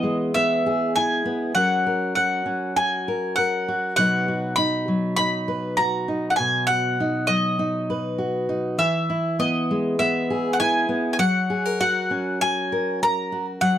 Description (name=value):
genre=folk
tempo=99 BPM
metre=4/4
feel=straight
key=B major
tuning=A4 = 440 Hz
part: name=bowl-back mandolin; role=melody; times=0.0-13.8 s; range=D#5 to B5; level=-22 LUFS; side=equal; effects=none
part: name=fingerpicked steel-string acoustic guitar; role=accompaniment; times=0.0-13.8 s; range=B2 to B4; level=-24 LUFS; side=equal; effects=none
room=light reverb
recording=dry, close 1970s-style studio recording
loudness=-20 LUFS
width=side -10 dB against mid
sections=0.0-13.8 A section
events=none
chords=0.0 E; 1.5 F#; 4.0 B; 8.8 E; 11.2 F#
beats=0.34 0.94 | 1.55 2.15 2.76 3.36 | 3.96 4.57 5.17 5.78 | 6.38 6.99 7.59 8.20 | 8.80 9.40 10.01 10.61 | 11.21 11.82 12.42 13.03 | 13.63